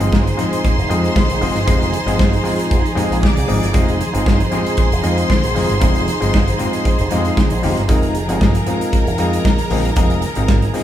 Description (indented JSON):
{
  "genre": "disco",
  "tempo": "116 BPM",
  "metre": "4/4",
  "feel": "straight",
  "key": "unclear",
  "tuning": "A4 = 440 Hz",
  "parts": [
    { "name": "clear studio string section", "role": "second line", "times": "0.0-10.8 s", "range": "Bb4 to D6", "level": "-24 LUFS", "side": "left 2 dB", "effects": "none" },
    { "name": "auto-wah clav", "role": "accompaniment", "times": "0.0-10.8 s", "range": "F3 to Bb4", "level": "-21 LUFS", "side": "left 1 dB", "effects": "none" },
    { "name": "dark symphonic string section", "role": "sustained chords", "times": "0.0-10.8 s", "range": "F3 to Ab4", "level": "-23 LUFS", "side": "right 3 dB", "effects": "none" },
    { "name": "picked electric bass with an envelope filter", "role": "bass", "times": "0.0-10.7 s", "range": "F1 to F2", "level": "-21 LUFS", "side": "equal", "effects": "none" },
    { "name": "modern studio drum kit", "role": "drums", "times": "0.0-10.8 s", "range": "hi-hat, kick drum, snare drum", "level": "-18 LUFS", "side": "equal", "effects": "none" },
    { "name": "congas", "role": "percussion", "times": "0.1-10.8 s", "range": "none", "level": "-30 LUFS", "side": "left 3 dB", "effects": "none" }
  ],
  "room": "wet large studio reverb, RT60 0.9 s",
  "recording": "band playing live in one room",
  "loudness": "-14 LUFS",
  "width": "side -11 dB against mid",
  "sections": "0.0-10.8 A section",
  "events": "none",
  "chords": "0.0 Fm7",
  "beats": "0.12 0.64 1.16 | 1.67 2.19 2.71 3.23 | 3.75 4.26 4.78 5.30 | 5.82 6.34 6.86 7.38 | 7.89 8.41 8.93 9.45 | 9.97 10.49"
}